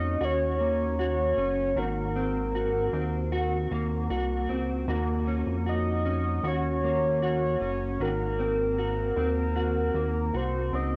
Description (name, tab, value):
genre	dream pop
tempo	77 BPM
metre	4/4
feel	straight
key	unclear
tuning	A4 = 436 Hz
part	soft octave-layered synth lead	melody	0.0-11.0 s	Bb4 to Eb5	-31 LUFS	equal	chorus, cassette tape, analog delay
part	mellow electric guitar	arpeggios	0.0-11.0 s	Eb3 to Gb4	-33 LUFS	equal	ensemble chorus, cassette tape, analog delay
part	chorused synth bass	bass	0.0-11.0 s	Gb1 to F2	-32 LUFS	equal	none
room	moderate small room reverb, RT60 0.6 s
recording	home recording on cassette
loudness	-28 LUFS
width	mono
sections	0.0-11.0 A section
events	none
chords	0.0 Ebm7; 1.8 Ab9; 4.9 Ebm7; 8.0 Ab9